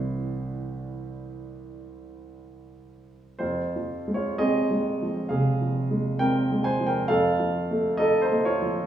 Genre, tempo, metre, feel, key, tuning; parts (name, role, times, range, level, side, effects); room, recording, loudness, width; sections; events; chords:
classical, romantic nocturne for solo piano; 56-67 BPM; 4/4; rubato; F minor; A4 = 440 Hz
warm grand piano; solo; 0.0-8.9 s; C2 to Ab5; -24 LUFS; right 1 dB
wet large studio reverb, RT60 1.4 s; heard from further back in the room, small room ambience; -23 LUFS; side -10 dB against mid
0.0-8.9 A section
0.0 C; 3.4 Fm; 7.1 F7